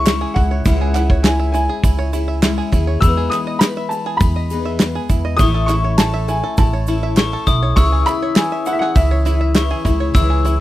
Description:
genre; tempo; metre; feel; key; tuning
indie folk with a building arrangement; 101 BPM; 4/4; straight; unclear; A4 = 438 Hz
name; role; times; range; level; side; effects
warm upright piano; melody; 0.0-10.6 s; E5 to E6; -22 LUFS; left 1 dB; none
picked twelve-string acoustic guitar; accompaniment; 0.0-10.6 s; A2 to A4; -24 LUFS; left 6 dB; none
bluegrass banjo; arpeggios; 0.0-10.6 s; E4 to E5; -26 LUFS; right 8 dB; none
upright bass; bass; 0.0-10.6 s; A1 to E2; -18 LUFS; equal; none
loose indie drum kit; drums; 0.1-10.6 s; hi-hat, kick drum, snare drum; -15 LUFS; equal; none
egg shaker; percussion; 0.1-10.6 s; none; -36 LUFS; right 15 dB; none
group handclap; percussion; 0.1-9.7 s; none; -27 LUFS; right 7 dB; none
glockenspiel with soft plastic mallets; second line; 3.0-10.6 s; B5 to E6; -26 LUFS; left 6 dB; none
room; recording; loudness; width
little or no reverb; dry, close 1970s-style studio recording; -14 LUFS; side -15 dB against mid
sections
0.0-10.6 A section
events
none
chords
0.0 C#m; 3.0 Emaj7; 5.4 A; 7.8 C#m

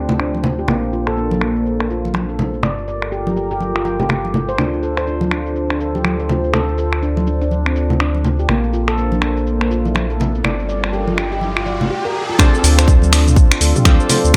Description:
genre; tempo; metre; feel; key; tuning
afro house; 123 BPM; 4/4; swing 60% on 16ths; D minor; A4 = 440 Hz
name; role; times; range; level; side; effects
dark analog pad; sustained chords; 0.0-14.4 s; G3 to C6; -27 LUFS; equal; chorus, sidechain pumping
handpan; arpeggios; 0.0-14.4 s; Bb3 to G5; -25 LUFS; equal; sidechain pumping, low-pass filter, digital delay
smooth synth bass; bass; 0.0-14.3 s; G1 to D2; -22 LUFS; equal; sidechain pumping
house drum kit; drums; 0.1-14.4 s; finger snaps, hi-hat, shaker, toms; -22 LUFS; equal; low-pass filter on perc, low-pass filter on toms, low-pass filter on snare, low-pass filter on hats
congas; percussion; 0.1-14.4 s; none; -24 LUFS; equal; none
riser; sound effects; 10.2-12.4 s; none; -30 LUFS; equal; none
warm analog keys; stabs; 12.4-14.4 s; C4 to A4; -22 LUFS; equal; chorus, sidechain pumping, digital delay
electronic kick drum; drums; 12.4-14.4 s; none; -13 LUFS; equal; none
room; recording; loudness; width
light reverb; none; -17 LUFS; mono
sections
0.0-12.4 A section; 12.4-14.4 B section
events
filter sweep on handpan 0.0-12.4; riser 10.2-12.4; drop 12.4-14.4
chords
0.0 Dm7; 0.7 Bbmaj9; 2.6 Gm9; 4.6 Dm7; 8.5 Bbmaj9; 10.4 Gm9; 12.4 Dm7

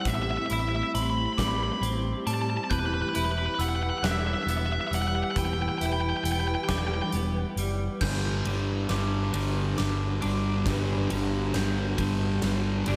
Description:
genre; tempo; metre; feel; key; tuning
post-rock; 45 BPM (dotted quarters); 6/8; straight; G major; A4 = 440 Hz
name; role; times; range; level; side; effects
nasal lead guitar with a parked wah; melody; 0.0-7.1 s; B4 to B5; -33 LUFS; equal; overdrive, diffuse ambient delay
granular cloud pad; sustained chords; 0.0-13.0 s; E3 to B4; -39 LUFS; equal; built-in reverb
clean electric guitar; arpeggios; 0.0-13.0 s; G2 to E4; -36 LUFS; equal; analog chorus, diffuse ambient delay
glockenspiel with soft plastic mallets; arpeggios; 0.0-12.4 s; D6 to G6; -42 LUFS; equal; diffuse ambient delay
picked electric bass; bass; 0.1-13.0 s; E1 to A2; -32 LUFS; equal; none
huge arena drum kit; drums; 0.1-13.0 s; crash cymbal, hi-hat, kick drum, ride cymbal, snare drum; -37 LUFS; equal; none
fuzz guitar; riff; 8.0-13.0 s; G2 to G3; -31 LUFS; equal; distortion
room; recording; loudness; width
wet plate reverb, RT60 2.4 s; dreamy mix soaked in reverb; -28 LUFS; mono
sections
0.0-8.0 A section; 8.0-13.0 B section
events
build-up 8.0-13.0; drum fill 8.0-13.0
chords
0.0 Am7; 2.7 Em; 8.0 Gmaj7

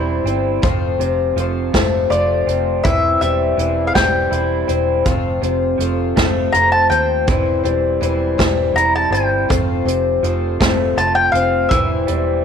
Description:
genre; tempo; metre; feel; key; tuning
folk rock and heartland rock; 54 BPM (dotted quarters); 6/8; straight; F major; A4 = 440 Hz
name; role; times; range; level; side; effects
mandolin; melody; 0.0-12.4 s; C5 to Bb5; -17 LUFS; left 1 dB; slapback echo
picked twelve-string acoustic guitar; accompaniment; 0.0-12.4 s; E3 to C5; -20 LUFS; left 11 dB; none
electric guitar through a small old amp; riff; 0.0-12.4 s; F2 to F4; -23 LUFS; right 13 dB; none
vintage muted fingered electric bass; bass; 0.0-12.4 s; E1 to Eb2; -22 LUFS; right 1 dB; none
soft brush drum kit; drums; 0.3-12.3 s; hi-hat, kick drum, snare drum; -19 LUFS; right 2 dB; none
room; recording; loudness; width
moderate plate reverb, RT60 1.9 s; 1960s-style stereo with parts hard left and right; -14 LUFS; side -7 dB against mid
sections
0.0-12.4 A section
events
none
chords
0.0 C/E; 0.6 F; 2.8 C/E; 5.1 F; 7.3 C/E; 9.5 F; 11.7 C/E

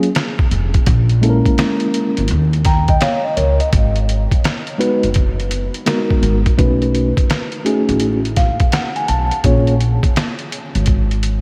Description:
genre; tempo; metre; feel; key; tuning
hip hop, jazz-hop; 84 BPM; 4/4; swing 65% on 16ths; unclear; A4 = 440 Hz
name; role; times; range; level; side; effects
mellow tine electric piano; accompaniment; 0.0-9.7 s; G#3 to A#5; -21 LUFS; equal; none
trip hop sampler-style drum kit; drums; 0.0-11.4 s; hi-hat, kick drum, snare drum; -20 LUFS; equal; none
upright bass; bass; 0.5-11.4 s; E#1 to D#2; -19 LUFS; equal; none
room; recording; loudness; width
moderate cathedral reverb, RT60 6.1 s; dreamy mix soaked in reverb, vinyl crackle; -16 LUFS; mono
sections
0.0-11.4 A section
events
tine electric piano fill 8.0-9.4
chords
0.0 N.C.; 0.9 A#m7b5; 2.3 C#69; 3.7 G#m7; 6.6 B9; 9.4 A#m7

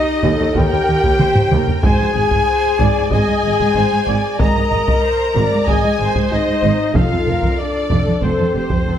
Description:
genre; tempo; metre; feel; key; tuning
cinematic, epic orchestral film score; 94 BPM; 4/4; straight; unclear; A4 = 439 Hz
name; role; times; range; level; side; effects
clear symphonic violin section; melody; 0.0-9.0 s; C5 to Bb5; -26 LUFS; left 3 dB; none
bright concert flute; second line; 0.0-9.0 s; C5 to Bb5; -23 LUFS; left 1 dB; none
clear symphonic violin section; second line; 0.0-9.0 s; C5 to Bb5; -27 LUFS; equal; none
rich symphonic viola section; accompaniment; 0.0-9.0 s; G4 to Eb5; -23 LUFS; equal; none
warm French horn section; sustained chords; 0.0-9.0 s; C4 to Bb4; -20 LUFS; left 3 dB; none
clear symphonic double bass section; bass; 0.2-8.9 s; F1 to Eb2; -22 LUFS; right 3 dB; none
rich symphonic cello section; bass; 0.2-8.9 s; Eb2 to Ab2; -22 LUFS; right 2 dB; none
taiko ensemble; drums; 0.2-9.0 s; none; -20 LUFS; equal; none
room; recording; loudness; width
moderate scoring stage reverb, RT60 1.7 s; none; -13 LUFS; side -10 dB against mid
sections
0.0-9.0 A section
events
drum fill 1.2-1.8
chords
0.0 Eb; 1.8 Ab; 7.0 F

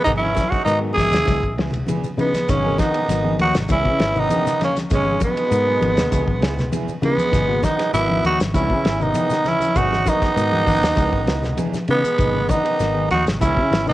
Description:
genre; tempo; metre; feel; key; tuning
afrobeat; 99 BPM; 4/4; straight; G# minor; A4 = 439 Hz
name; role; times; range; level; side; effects
growling tenor saxophone; melody; 0.0-13.9 s; B3 to G#4; -20 LUFS; right 1 dB; cassette tape
breathy tenor saxophone; second line; 0.0-13.9 s; G#3 to E4; -29 LUFS; right 6 dB; cassette tape
congas; percussion; 0.0-13.9 s; none; -26 LUFS; left 1 dB; none
bright trombone section; second line; 0.1-13.9 s; B2 to G#3; -33 LUFS; left 6 dB; none
semi-hollow electric guitar; arpeggios; 0.1-13.9 s; C#3 to F#3; -32 LUFS; left 6 dB; none
mellow electric guitar; stabs; 0.1-13.9 s; F#3 to G#4; -31 LUFS; right 6 dB; cassette tape
fingered electric bass; bass; 0.1-13.9 s; G#1 to C#3; -24 LUFS; equal; none
damped 70s drum kit; drums; 0.1-13.9 s; hi-hat, kick drum, ride cymbal, snare drum; -24 LUFS; equal; cassette tape
shekere; percussion; 0.1-13.9 s; none; -35 LUFS; left 6 dB; none
bright reed electric piano; accompaniment; 0.7-13.9 s; C#3 to B4; -30 LUFS; left 6 dB; cassette tape
room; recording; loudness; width
light reverb, small room ambience; home recording on cassette; -16 LUFS; side -15 dB against mid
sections
0.0-2.5 A section; 2.5-13.9 A section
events
none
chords
0.1 G#m7; 1.3 C#m7; 2.5 G#m7; 3.7 C#m7; 4.9 G#m7; 6.1 C#m7; 7.3 G#m7; 8.5 C#m7; 9.8 G#m7; 11.0 C#m7; 12.2 G#m7; 13.4 C#m7

